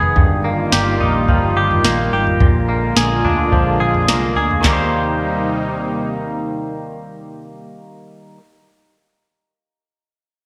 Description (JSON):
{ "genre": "dream pop", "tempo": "107 BPM", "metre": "4/4", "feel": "straight", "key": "Eb major", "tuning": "A4 = 440 Hz", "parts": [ { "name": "warm analog pad", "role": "sustained chords", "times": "0.0-7.7 s", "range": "C3 to Ab4", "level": "-24 LUFS", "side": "equal", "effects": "chorus" }, { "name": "direct-recorded clean electric guitar", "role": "arpeggios", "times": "0.0-8.4 s", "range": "G2 to C5", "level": "-22 LUFS", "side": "equal", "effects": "lush chorus, delay" }, { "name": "vintage muted picked electric bass", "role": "bass", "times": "0.0-8.4 s", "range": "F1 to Eb2", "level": "-24 LUFS", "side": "equal", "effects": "none" }, { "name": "soft vintage rhythm box", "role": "drums", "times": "0.0-4.8 s", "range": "handclaps, kick drum, snare drum, toms", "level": "-20 LUFS", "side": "equal", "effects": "gated reverb" } ], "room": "wet plate reverb, RT60 1.3 s", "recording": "bright 1980s-style digital production", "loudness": "-17 LUFS", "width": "mono", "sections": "0.0-4.6 A section; 4.6-6.9 B section", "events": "none", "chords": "0.2 Ebadd9/G; 2.4 Bb7; 4.6 Eb6" }